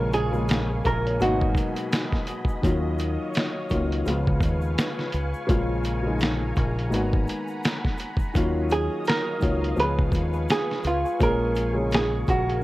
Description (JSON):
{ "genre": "lo-fi hip hop", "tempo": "84 BPM", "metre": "4/4", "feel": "swing 56% on 16ths", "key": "unclear", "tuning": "A4 = 440 Hz", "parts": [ { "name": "hollow-body jazz guitar", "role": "melody", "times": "0.0-1.9, 8.7-12.6 s", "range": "F4 to Cb5", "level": "-26 LUFS", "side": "right 2 dB", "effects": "low-pass filter, tape echo" }, { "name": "dark upright piano", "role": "accompaniment", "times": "0.0-12.6 s", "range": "Cb3 to Db5", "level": "-28 LUFS", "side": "left 2 dB", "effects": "cassette tape, low-pass filter" }, { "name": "soft string machine", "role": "sustained chords", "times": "0.0-12.6 s", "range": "Bb3 to Eb6", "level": "-35 LUFS", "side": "equal", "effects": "ensemble chorus, low-pass filter" }, { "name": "deep dub fingered electric bass", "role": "bass", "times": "0.0-12.6 s", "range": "Ab1 to Eb2", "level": "-27 LUFS", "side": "equal", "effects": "none" }, { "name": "dusty soul sampler-style drum kit", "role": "drums", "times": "0.1-12.6 s", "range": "hi-hat, kick drum, snare drum", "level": "-26 LUFS", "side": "equal", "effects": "none" }, { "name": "egg shaker", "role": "percussion", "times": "0.1-12.5 s", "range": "none", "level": "-57 LUFS", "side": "left 3 dB", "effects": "none" } ], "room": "light reverb, digital ambience", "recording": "worn, warbling old tape, cassette tape, warbly pitch drift", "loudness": "-22 LUFS", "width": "side -17 dB against mid", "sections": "0.0-12.6 A section", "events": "none", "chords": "0.0 Bbm7; 1.2 Abm9; 2.6 Ebm9; 4.1 Db7; 5.5 Bbm7; 6.9 Abm9; 8.3 Ebm9; 9.8 Db7; 11.2 Bbm7" }